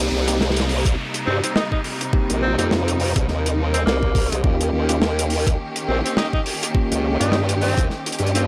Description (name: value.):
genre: glitch hop.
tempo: 104 BPM.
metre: 4/4.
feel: swing 57% on 16ths.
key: C phrygian.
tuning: A4 = 439 Hz.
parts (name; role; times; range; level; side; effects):
rich symphonic string section; sustained chords; 0.0-8.5 s; C3 to G4; -30 LUFS; equal; sidechain pumping.
bell-like tine electric piano; stabs; 0.0-8.5 s; Bb3 to G4; -28 LUFS; equal; vintage 12-bit sampler grit, sidechain pumping, analog delay.
formant-sweep wobble bass; bass; 0.0-8.5 s; Bb1 to G2; -23 LUFS; equal; chorus, overdrive.
downlifter; sound effects; 0.0-4.4 s; none; -34 LUFS; equal; none.
warm soul drum kit; drums; 0.3-8.5 s; hi-hat, rim click, snare drum; -26 LUFS; equal; none.
electronic kick drum; drums; 0.9-7.9 s; none; -23 LUFS; equal; none.
breathy tenor saxophone; melody; 1.3-8.4 s; Bb3 to Eb4; -29 LUFS; equal; vintage 12-bit sampler grit, analog delay.
room: small room ambience.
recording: dry, gritty hardware recording.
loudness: -21 LUFS.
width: mono.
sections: 0.0-8.5 A section.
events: none.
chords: 0.0 Cm7; 4.4 Eb7.